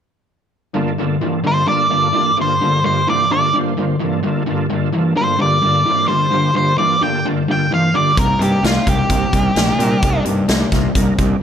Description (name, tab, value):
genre	blues rock power trio and southern rock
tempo	130 BPM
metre	4/4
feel	straight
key	G minor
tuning	A4 = 440 Hz
part	overdriven tonewheel organ	sustained chords	0.7-11.4 s	G2 to C5	-24 LUFS	right 4 dB	slow rotary speaker, chorus vibrato
part	distorted electric guitar	riff	0.7-11.4 s	G2 to A3	-18 LUFS	left 1 dB	distortion
part	octave-fuzz lead guitar	melody	1.5-10.2 s	F4 to G5	-17 LUFS	equal	distortion
part	fuzz fingered electric bass	bass	8.2-11.3 s	Bb1 to Bb2	-20 LUFS	equal	overdrive
part	big rock drum kit	drums	8.2-11.3 s	hi-hat, kick drum, snare drum	-19 LUFS	equal	none
room	moderate large studio reverb, RT60 0.8 s, small room ambience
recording	none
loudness	-14 LUFS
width	side -8 dB against mid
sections	0.8-11.4 A section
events	tonewheel organ fill 11.2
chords	0.8 Gm7; 8.2 Cm7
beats	| 0.75 1.22 1.69 2.15 | 2.62 3.08 3.54 4.01 | 4.47 4.94 5.40 5.87 | 6.33 6.79 7.25 7.72 | 8.18 8.64 9.10 9.56 | 10.03 10.49 10.95